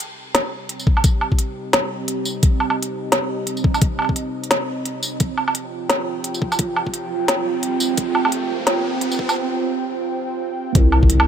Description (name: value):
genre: half-time drum and bass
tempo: 173 BPM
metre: 4/4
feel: swing 59% on 16ths, half-time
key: C minor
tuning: A4 = 439 Hz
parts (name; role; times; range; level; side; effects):
- dark analog pad; sustained chords; 0.0-11.3 s; C4 to G5; -24 LUFS; right 3 dB; chorus, sidechain pumping
- organic electronic drum kit; drums; 0.0-11.3 s; hi-hat, snare drum, tambourine, woodblock; -21 LUFS; right 1 dB; none
- electronic kick drum; drums; 0.9-11.1 s; none; -17 LUFS; left 1 dB; overdrive
- riser and impact; sound effects; 6.7-11.3 s; none; -31 LUFS; left 1 dB; none
- growling 808-style bass; bass; 10.8-11.3 s; C2; -15 LUFS; left 1 dB; none
room: light reverb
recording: high-pass filter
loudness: -18 LUFS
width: side -8 dB against mid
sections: 0.0-10.8 A section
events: build-up 0.0-10.8; filter sweep on analog synth pad 0.0-10.8; riser 6.7-9.4; break 9.4-10.8; impact 10.8-11.3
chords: 0.0 Cm